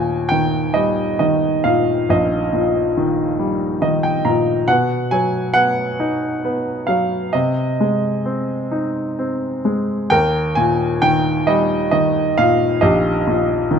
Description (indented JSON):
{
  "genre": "classical, lyrical solo piano",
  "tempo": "43-48 BPM (dotted quarters)",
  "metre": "6/8",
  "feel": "rubato",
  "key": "Eb major",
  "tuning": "A4 = 440 Hz",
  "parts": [
    { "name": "clear grand piano", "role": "solo", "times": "0.0-13.8 s", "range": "Bb1 to Bb5", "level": "-16 LUFS", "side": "equal", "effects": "none" }
  ],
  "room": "light reverb",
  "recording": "close, detailed microphones",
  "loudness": "-16 LUFS",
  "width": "side -7 dB against mid",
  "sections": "0.0-10.1 A section; 10.1-13.8 A section",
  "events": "grand piano fill 3.4-4.7",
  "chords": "0.0 Eb; 4.7 B; 7.3 Ab/C; 10.1 Eb"
}